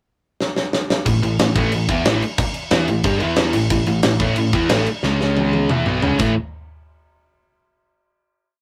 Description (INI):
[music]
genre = punk rock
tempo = 181 BPM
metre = 4/4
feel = straight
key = A major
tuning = A4 = 444 Hz
[part]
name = big rock drum kit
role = drums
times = 0.4-6.3 s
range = crash cymbal, kick drum, snare drum, toms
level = -22 LUFS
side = equal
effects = none
[part]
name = overdriven electric guitar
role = riff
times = 1.1-6.3 s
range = A2 to G4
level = -21 LUFS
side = equal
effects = none
[part]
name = picked electric bass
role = bass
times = 1.1-6.4 s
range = A1 to G2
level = -26 LUFS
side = equal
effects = none
[sound]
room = light reverb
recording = rough rehearsal-room recording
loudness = -19 LUFS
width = mono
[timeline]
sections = 0.0-1.1 pickup bar; 1.1-6.4 riff; 6.4-7.7 final hit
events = drum fill 0.4-1.1, 5.0-6.4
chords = 0.0 N.C.; 1.1 A5; 3.2 E5; 3.5 A5; 5.0 C#5; 5.7 Bsus4; 6.0 C#5; 6.2 A5; 6.4 N.C.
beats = 0.07 0.40 0.73 | 1.06 1.39 1.72 2.05 | 2.38 2.71 3.04 3.38 | 3.71 4.04 4.37 4.70 | 5.04 5.37 5.70 6.03